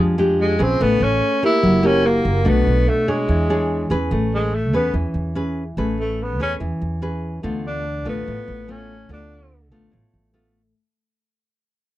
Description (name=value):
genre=bossa nova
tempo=145 BPM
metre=4/4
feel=straight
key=A major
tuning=A4 = 440 Hz
part: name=nylon-string guitar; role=accompaniment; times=0.0-10.7 s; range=A2 to C#5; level=-21 LUFS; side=equal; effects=none
part: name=upright bass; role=bass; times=0.0-10.7 s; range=F#1 to F2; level=-23 LUFS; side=right 1 dB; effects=none
part: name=breathy tenor saxophone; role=melody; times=0.4-9.7 s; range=G#3 to E4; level=-21 LUFS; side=equal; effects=none
room=light reverb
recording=dry, close 1970s-style studio recording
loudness=-17 LUFS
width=side -15 dB against mid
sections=0.0-4.1 A section; 4.1-10.8 B section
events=fade-out 4.1-10.8; tenor saxophone solo 4.1-10.8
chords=0.0 Bb6; 0.8 Amaj9; 1.6 F#7b9; 2.5 Bm7; 3.3 E6; 4.1 Amaj9; 7.4 Dm6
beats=0.39 | 0.80 1.22 1.63 2.04 | 2.46 2.87 3.29 3.70 | 4.12 4.53 4.95 5.36 | 5.78 6.19 6.61 7.02 | 7.43 7.85 8.26 8.68 | 9.09 9.51 9.92 10.34